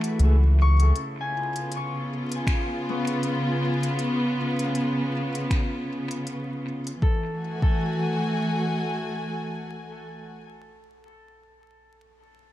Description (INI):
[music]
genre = ambient dub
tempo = 79 BPM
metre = 4/4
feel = swing 59% on 16ths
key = F# minor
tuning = A4 = 440 Hz
[part]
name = dark chamber string section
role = sustained chords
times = 0.0-10.4 s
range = C#3 to G#5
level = -27 LUFS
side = equal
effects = none
[part]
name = Celtic harp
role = arpeggios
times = 0.0-10.7 s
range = B3 to C#6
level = -34 LUFS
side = left 4 dB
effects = low-pass filter, dub echo
[part]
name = organic electronic drum kit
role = drums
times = 0.0-7.0 s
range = finger snaps, hi-hat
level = -37 LUFS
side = left 1 dB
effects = dub echo
[part]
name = round analog bass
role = bass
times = 0.2-0.9 s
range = C#2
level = -16 LUFS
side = equal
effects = none
[part]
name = electronic kick drum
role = drums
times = 2.5-7.8 s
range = none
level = -23 LUFS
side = equal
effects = none
[sound]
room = light reverb, digital ambience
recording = echo-heavy mix, vinyl crackle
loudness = -23 LUFS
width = side -14 dB against mid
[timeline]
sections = 0.0-7.0 A section; 7.0-10.1 B section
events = filter sweep on harp 0.0-7.0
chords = 0.0 F#m7; 0.9 C#7; 7.0 F#m9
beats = 0.19 | 0.95 1.71 2.47 3.23 | 3.99 4.75 5.51 6.26 | 7.03 7.78 8.54 9.30